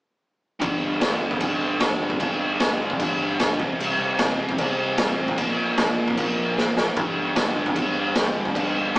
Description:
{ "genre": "punk rock", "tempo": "151 BPM", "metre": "4/4", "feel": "straight", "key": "unclear", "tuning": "A4 = 444 Hz", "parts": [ { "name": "biting overdriven guitar", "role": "riff", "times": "0.6-9.0 s", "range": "G2 to C4", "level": "-26 LUFS", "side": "equal", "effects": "none" }, { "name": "picked electric bass", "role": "bass", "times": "0.6-9.0 s", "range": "G1 to C2", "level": "-38 LUFS", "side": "equal", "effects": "none" }, { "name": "raw garage drum kit", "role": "drums", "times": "0.6-9.0 s", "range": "crash cymbal, kick drum, snare drum", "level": "-22 LUFS", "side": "equal", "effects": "none" } ], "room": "light reverb", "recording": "rough rehearsal-room recording, small speaker sound", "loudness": "-20 LUFS", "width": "side -22 dB against mid", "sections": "0.6-9.0 A section", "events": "drum fill 6.6-7.0", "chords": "0.6 G5; 3.6 C5; 5.4 Bb5; 7.0 G5" }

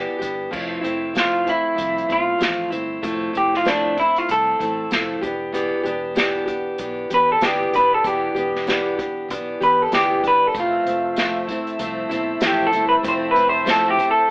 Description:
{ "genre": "indie pop, bedroom pop", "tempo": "96 BPM", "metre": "4/4", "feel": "swing 60% on 16ths", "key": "unclear", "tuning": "A4 = 439 Hz", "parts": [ { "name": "picked plugged-in steel-string acoustic guitar", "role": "accompaniment", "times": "0.0-14.3 s", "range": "E3 to G4", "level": "-24 LUFS", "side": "equal", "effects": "warbly pitch drift" }, { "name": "vintage muted fingered electric bass", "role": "bass", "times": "0.0-14.3 s", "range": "E1 to E2", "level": "-40 LUFS", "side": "equal", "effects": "none" }, { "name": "unplugged drum kit", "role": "drums", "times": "0.2-14.2 s", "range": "crash cymbal, hi-hat, kick drum, snare drum", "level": "-24 LUFS", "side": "equal", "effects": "none" }, { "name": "electric guitar through a small old amp", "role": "melody", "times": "1.2-14.3 s", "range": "D4 to C5", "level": "-17 LUFS", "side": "equal", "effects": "none" }, { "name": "tambourine", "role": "percussion", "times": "10.5-14.2 s", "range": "none", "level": "-40 LUFS", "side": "right 2 dB", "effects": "none" }, { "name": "hollow soft pad", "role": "sustained chords", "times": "10.6-14.3 s", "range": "C5 to E6", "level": "-28 LUFS", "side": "equal", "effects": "chorus" } ], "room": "moderate studio reverb, RT60 0.8 s", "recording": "band playing live in one room, AM radio sound", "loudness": "-17 LUFS", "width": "side -24 dB against mid", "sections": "0.5-14.3 A section", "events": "clean electric guitar solo 0.5-14.3", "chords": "0.0 Em7; 0.5 Fmaj7; 5.2 Em7; 10.5 Fmaj7" }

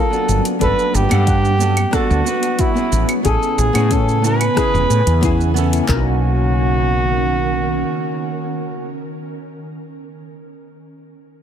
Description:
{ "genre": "sunset chillout", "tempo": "91 BPM", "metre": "4/4", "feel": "straight", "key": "unclear", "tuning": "A4 = 440 Hz", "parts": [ { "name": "mellow flugelhorn", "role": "melody", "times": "0.0-8.9 s", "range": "E4 to B4", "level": "-20 LUFS", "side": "right 1 dB", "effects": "digital delay" }, { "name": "nylon-string guitar", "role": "accompaniment", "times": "0.0-9.0 s", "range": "A#3 to G#5", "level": "-23 LUFS", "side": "moving between left 5 dB and right 1 dB", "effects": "auto-pan, digital delay" }, { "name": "ethereal airy pad", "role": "sustained chords", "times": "0.0-8.9 s", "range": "C#3 to G#5", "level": "-24 LUFS", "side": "right 2 dB", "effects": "ensemble chorus, built-in reverb" }, { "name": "steel pan", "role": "arpeggios", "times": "0.0-6.2 s", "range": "C#4 to F#5", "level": "-26 LUFS", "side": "left 2 dB", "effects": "digital delay" }, { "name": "deep house drum kit", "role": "drums", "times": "0.1-5.9 s", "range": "claves, hi-hat, rim click, shaker", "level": "-26 LUFS", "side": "right 2 dB", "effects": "overdrive" }, { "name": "woody fretless electric bass", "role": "bass", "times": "0.3-7.8 s", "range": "E1 to A2", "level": "-17 LUFS", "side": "equal", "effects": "none" }, { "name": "deep house drum kit", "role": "drums", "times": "0.6-6.0 s", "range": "handclaps, kick drum", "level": "-20 LUFS", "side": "equal", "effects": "overdrive" } ], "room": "light reverb, digital ambience", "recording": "none", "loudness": "-14 LUFS", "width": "side -9 dB against mid", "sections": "0.0-5.9 A section; 5.9-8.5 B section", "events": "none", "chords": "0.3 Gmaj9; 2.9 Amaj9; 5.9 Bmaj9" }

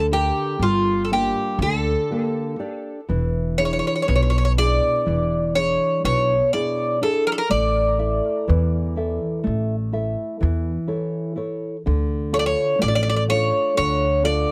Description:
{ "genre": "greek folk, Greek bouzouki band", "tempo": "123 BPM (eighths)", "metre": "9/8", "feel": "straight", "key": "D harmonic minor", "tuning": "A4 = 440 Hz", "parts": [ { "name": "Greek bouzouki", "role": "melody", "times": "0.0-14.5 s", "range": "F4 to D5", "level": "-23 LUFS", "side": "equal", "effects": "none" }, { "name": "nylon-string guitar", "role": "accompaniment", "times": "0.0-14.5 s", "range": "B2 to E5", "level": "-27 LUFS", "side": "equal", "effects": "none" }, { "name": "upright bass", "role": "bass", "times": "0.0-14.4 s", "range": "E1 to E2", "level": "-25 LUFS", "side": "equal", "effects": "none" } ], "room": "little or no reverb", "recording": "dry, close 1970s-style studio recording", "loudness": "-21 LUFS", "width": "mono", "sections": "0.0-11.9 A section; 11.9-14.5 A section", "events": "speeding up 0.0-14.5", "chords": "0.0 Gm; 3.1 E7; 7.5 A; 11.9 Dm" }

